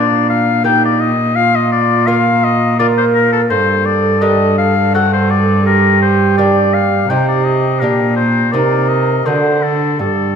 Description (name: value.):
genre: classical, baroque-style sonata movement with continuo.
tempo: 84 BPM.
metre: 3/4.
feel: straight.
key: Bb major, G minor from 3.5 s.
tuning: A4 = 441 Hz.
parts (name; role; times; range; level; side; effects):
warm oboe; melody; 0.0-10.4 s; A4 to G5; -15 LUFS; left 7 dB; none.
baroque flute; second line; 0.0-10.4 s; D4 to Bb4; -17 LUFS; right 5 dB; none.
lute; accompaniment; 0.0-10.4 s; G2 to Bb4; -21 LUFS; left 2 dB; none.
rich cello; bass; 0.0-10.4 s; G2 to D3; -16 LUFS; right 1 dB; none.
room: wet recital hall reverb, RT60 1.8 s.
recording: none.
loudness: -11 LUFS.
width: side -6 dB against mid.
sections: 0.0-10.4 A section.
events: none.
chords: 0.0 Bb; 0.6 Eb/Bb; 1.4 Bb5; 3.5 Gm; 4.9 D7/G; 5.7 Gm; 7.1 Cm; 7.8 Gm/Bb; 8.5 Cm; 9.3 D7.